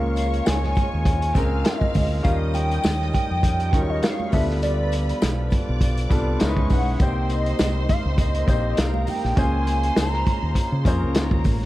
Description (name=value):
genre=lush 1970s-style soul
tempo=101 BPM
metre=4/4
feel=swing 54% on 16ths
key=Bb dorian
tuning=A4 = 439 Hz
part: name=hollow square lead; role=melody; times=0.0-11.2 s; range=D5 to Bb5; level=-28 LUFS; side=equal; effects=chorus, tape echo
part: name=clear symphonic string section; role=second line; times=0.0-11.7 s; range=Bb4 to F6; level=-35 LUFS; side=right 1 dB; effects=none
part: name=clear concert grand piano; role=accompaniment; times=0.0-11.7 s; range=Gb3 to C5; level=-28 LUFS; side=left 2 dB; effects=none
part: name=warm French horn section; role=sustained chords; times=0.0-11.7 s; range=C3 to G4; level=-36 LUFS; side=right 2 dB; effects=none
part: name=fingered electric bass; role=bass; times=0.0-11.7 s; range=A1 to Db3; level=-24 LUFS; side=equal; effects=none
part: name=vintage drum kit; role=drums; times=0.2-11.7 s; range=hi-hat, kick drum, snare drum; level=-23 LUFS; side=equal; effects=none
part: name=tambourine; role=percussion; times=0.2-11.6 s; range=none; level=-45 LUFS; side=left 15 dB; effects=none
part: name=congas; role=percussion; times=0.5-11.6 s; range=none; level=-34 LUFS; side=right 4 dB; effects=none
room=studio ambience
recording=dark, warm production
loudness=-19 LUFS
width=side -16 dB against mid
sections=0.0-11.7 A section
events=none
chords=0.0 Bbm7/Db; 2.2 Eb7; 4.3 G7; 6.4 Dbm7; 7.0 Cm7; 9.4 Bbm7/Db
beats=0.47 1.06 1.66 | 2.25 2.84 3.44 4.03 | 4.62 5.22 5.81 6.41 | 7.00 7.59 8.19 8.78 | 9.37 9.97 10.56 11.15